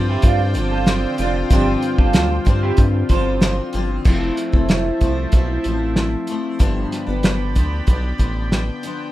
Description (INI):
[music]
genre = indie pop, bedroom pop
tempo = 94 BPM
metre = 4/4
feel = straight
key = unclear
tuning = A4 = 442 Hz
[part]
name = picked steel-string acoustic guitar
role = accompaniment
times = 0.0-9.1 s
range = G2 to F4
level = -23 LUFS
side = left 2 dB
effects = lush chorus, warbly pitch drift
[part]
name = phased analog pad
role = sustained chords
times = 0.0-9.1 s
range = F3 to B5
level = -28 LUFS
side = right 1 dB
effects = phaser, chorus
[part]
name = round analog bass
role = bass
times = 0.0-8.7 s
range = F1 to G2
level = -21 LUFS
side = equal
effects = none
[part]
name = electric guitar through a small old amp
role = second line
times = 0.1-3.6 s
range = D4 to C5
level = -25 LUFS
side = right 6 dB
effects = analog chorus, digital delay
[part]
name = cloth-damped thuddy drum kit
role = drums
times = 0.2-9.0 s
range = crash cymbal, hi-hat, kick drum, snare drum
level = -17 LUFS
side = equal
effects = none
[sound]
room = moderate studio reverb, RT60 0.6 s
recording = rough home demo mix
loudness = -16 LUFS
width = side -15 dB against mid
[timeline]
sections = 0.0-4.1 A section; 4.1-9.1 B section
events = none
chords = 0.0 G7sus4; 4.1 Fmaj7; 6.6 G7